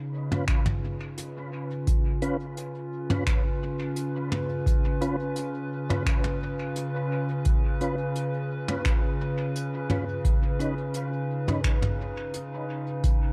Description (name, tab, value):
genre	ambient dub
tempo	86 BPM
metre	4/4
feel	straight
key	Db mixolydian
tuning	A4 = 442 Hz
part	warbly tape-like pad	sustained chords	0.0-13.3 s	Db3 to Cb5	-33 LUFS	equal	chorus, built-in reverb, vintage 12-bit sampler grit
part	tonewheel organ	stabs	0.3-11.6 s	Db4 to Cb5	-36 LUFS	equal	chorus vibrato, slow rotary speaker, dub echo
part	soft brush drum kit	drums	0.3-13.2 s	finger snaps, hi-hat, toms	-34 LUFS	equal	dub echo
part	electronic kick drum	drums	0.5-13.2 s	none	-27 LUFS	equal	none
room	small room ambience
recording	dark, warm production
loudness	-28 LUFS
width	mono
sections	0.0-13.3 A section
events	none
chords	0.0 Db7